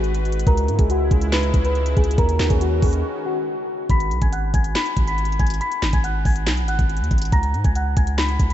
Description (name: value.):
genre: hip hop, trap.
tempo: 140 BPM.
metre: 4/4.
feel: half-time.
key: G# minor.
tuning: A4 = 444 Hz.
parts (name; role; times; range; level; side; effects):
celesta; melody; 0.0-8.5 s; F#4 to B6; -24 LUFS; left 1 dB; low-pass filter, analog delay.
sweeping resonant pad; sustained chords; 0.0-3.9 s; C#3 to B4; -31 LUFS; right 2 dB; chorus.
long sustained 808-style bass; bass; 0.0-8.5 s; G#1 to G#2; -21 LUFS; equal; none.
trap drum kit; drums; 0.0-8.5 s; handclaps, hi-hat, kick drum, snare drum; -21 LUFS; equal; none.
room: light reverb, digital ambience.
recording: nothing above 7.9 kHz.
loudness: -18 LUFS.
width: side -12 dB against mid.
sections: 0.0-3.9 A section; 3.9-8.5 B section.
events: break 3.0-3.9.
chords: 0.5 C#m; 2.2 D#m7; 3.9 G#m7; 7.3 C#5.